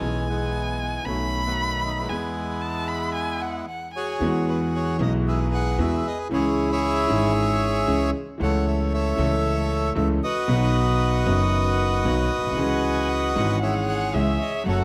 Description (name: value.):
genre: tango.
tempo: 115 BPM.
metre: 4/4.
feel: rubato.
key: E major.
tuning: A4 = 441 Hz.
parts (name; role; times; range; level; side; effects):
bandoneon; melody; 0.0-14.8 s; D#3 to F#5; -28 LUFS; equal; none.
warm violin; second line; 0.0-4.2, 12.6-14.8 s; E5 to B5; -32 LUFS; equal; none.
warm concert grand piano; accompaniment; 0.0-14.8 s; F#1 to A4; -28 LUFS; equal; none.
upright bass; bass; 0.0-14.8 s; F#1 to E2; -29 LUFS; equal; none.
room: moderate recital hall reverb, RT60 1.6 s.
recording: close, detailed microphones.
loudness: -23 LUFS.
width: mono.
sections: 0.0-4.2 A section; 4.2-14.8 B section.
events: break 3.7-4.2.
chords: 0.0 E/B; 1.1 B7; 2.1 E; 4.2 Eadd9; 6.3 C#m; 8.4 A/C#; 10.5 B; 12.6 C#m.